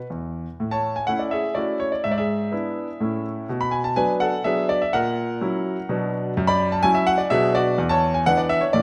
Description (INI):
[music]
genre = classical-period piano sonatina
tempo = 125 BPM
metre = 3/4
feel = straight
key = A major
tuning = A4 = 442 Hz
[part]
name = clear grand piano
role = solo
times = 0.0-8.8 s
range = E2 to B5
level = -22 LUFS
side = equal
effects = none
[sound]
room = wet recital hall reverb, RT60 1.6 s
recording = none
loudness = -22 LUFS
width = mono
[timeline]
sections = 0.6-8.8 A section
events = none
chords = 0.0 E5; 0.6 A; 2.0 E7/G#; 3.0 A; 3.5 Bm; 4.9 F#7/A#; 5.9 Bm; 6.4 F#5; 7.3 Bm; 7.8 E5